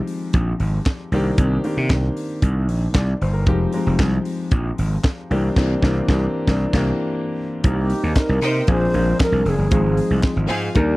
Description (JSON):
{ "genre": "disco", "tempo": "115 BPM", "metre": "4/4", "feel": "straight", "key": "unclear", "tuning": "A4 = 438 Hz", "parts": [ { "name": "warm concert grand piano", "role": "accompaniment", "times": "0.0-11.0 s", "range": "Eb3 to D5", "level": "-24 LUFS", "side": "left 2 dB", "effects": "none" }, { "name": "tight funk drum kit", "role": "drums", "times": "0.1-10.9 s", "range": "crash cymbal, handclaps, hi-hat, kick drum, snare drum", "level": "-18 LUFS", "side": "equal", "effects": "none" }, { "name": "gritty slap bass", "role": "bass", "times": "0.3-10.9 s", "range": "F1 to C3", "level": "-20 LUFS", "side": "equal", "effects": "overdrive" }, { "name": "warm French horn section", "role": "sustained chords", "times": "7.6-11.0 s", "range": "C3 to D5", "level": "-29 LUFS", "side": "right 1 dB", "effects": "none" }, { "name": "breathy bright wooden-headed alto flute", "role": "melody", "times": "7.7-10.5 s", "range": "G4 to C5", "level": "-23 LUFS", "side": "right 1 dB", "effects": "slapback echo" }, { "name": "clear studio string section", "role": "second line", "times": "8.4-10.7 s", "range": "C4 to G5", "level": "-24 LUFS", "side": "right 1 dB", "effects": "none" } ], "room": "little or no reverb", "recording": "dry, close 1970s-style studio recording", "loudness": "-17 LUFS", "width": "side -20 dB against mid", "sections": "0.0-7.6 A section; 7.6-11.0 B section", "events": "band accent 5.6-7.6", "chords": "0.0 Fm9; 1.1 Cm9; 3.5 Fm9; 5.3 C9; 7.6 Cm7; 8.7 Bb9; 9.7 Ab6" }